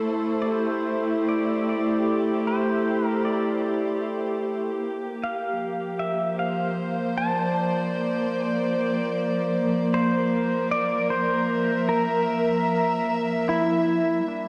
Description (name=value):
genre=ambient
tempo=76 BPM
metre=3/4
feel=straight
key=Bb lydian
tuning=A4 = 440 Hz
part: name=dark studio string section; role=sustained chords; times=0.0-14.5 s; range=F3 to E5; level=-26 LUFS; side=equal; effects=none
part: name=pedal steel guitar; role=melody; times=0.4-14.5 s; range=D4 to A5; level=-29 LUFS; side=equal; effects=tape echo
room=wet lush hall reverb, RT60 2.9 s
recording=dark, warm production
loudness=-25 LUFS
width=mono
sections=0.0-14.3 A section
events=fade-in on pedal steel guitar 0.0-14.3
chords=0.0 Am7; 4.8 Bbmaj7